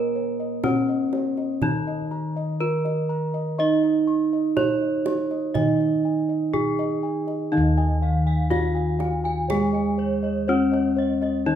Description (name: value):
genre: Javanese gamelan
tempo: 61 BPM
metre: 4/4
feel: straight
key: Eb slendro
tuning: A4 = 440 Hz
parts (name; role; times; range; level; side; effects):
- gamelan-type bronze metallophone; melody; 0.0-11.6 s; Db4-45c to Eb5; -26 LUFS; left 2 dB; none
- gamelan-type bronze metallophone; accompaniment; 0.0-11.6 s; Eb3 to Eb4; -25 LUFS; right 4 dB; none
- gamelan-type bossed gongs; arpeggios; 0.0-11.6 s; Db5-45c to Db6-45c; -33 LUFS; left 2 dB; none
- gamelan-type bossed gongs; bass; 0.0-11.6 s; Eb2 to Eb5; -28 LUFS; left 1 dB; none
- kendang; percussion; 0.6-11.3 s; none; -31 LUFS; right 3 dB; none
- gamelan-type bronze metallophone; arpeggios; 7.5-11.6 s; Db5-45c to Ab5-35c; -32 LUFS; right 3 dB; none
room: moderate recital hall reverb, RT60 1.4 s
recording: minimal, uncompressed stereo recording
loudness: -20 LUFS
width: side -9 dB against mid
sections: 0.0-7.5 A section; 7.5-11.6 A section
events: none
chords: none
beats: 0.65 1.63 2.61 | 3.60 4.58 5.56 6.55 | 7.53 8.52 9.50 10.48 | 11.47